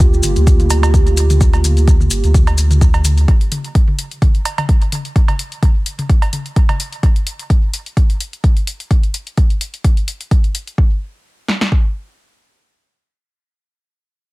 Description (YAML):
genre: dub techno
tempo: 128 BPM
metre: 4/4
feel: swing 55% on 16ths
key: G minor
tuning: A4 = 440 Hz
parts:
  - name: dark analog pad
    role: sustained chords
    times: 0.0-3.2 s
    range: Bb3 to G4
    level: -22 LUFS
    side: right 3 dB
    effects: chorus, sidechain pumping
  - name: warm sub bass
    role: bass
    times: 0.0-3.3 s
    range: G1 to D2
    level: -13 LUFS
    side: equal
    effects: tube saturation, sidechain pumping
  - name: deep house drum kit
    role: drums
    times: 0.0-11.8 s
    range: kick drum, snare drum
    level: -12 LUFS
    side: equal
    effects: overdrive
  - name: electronic hi-hat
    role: drums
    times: 0.0-10.8 s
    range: none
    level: -26 LUFS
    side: left 2 dB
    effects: overdrive
  - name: maracas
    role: percussion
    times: 0.0-3.3 s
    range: none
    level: -25 LUFS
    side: left 3 dB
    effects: none
  - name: electronic toms and cowbell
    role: percussion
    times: 0.2-6.8 s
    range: none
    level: -24 LUFS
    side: right 1 dB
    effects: sidechain pumping on toms, sidechain pumping on perc, dub echo
room: digital ambience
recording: none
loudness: -12 LUFS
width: side -21 dB against mid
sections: 0.0-10.8 A section; 10.8-14.3 B section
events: none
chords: 0.0 Gm7; 3.3 N.C.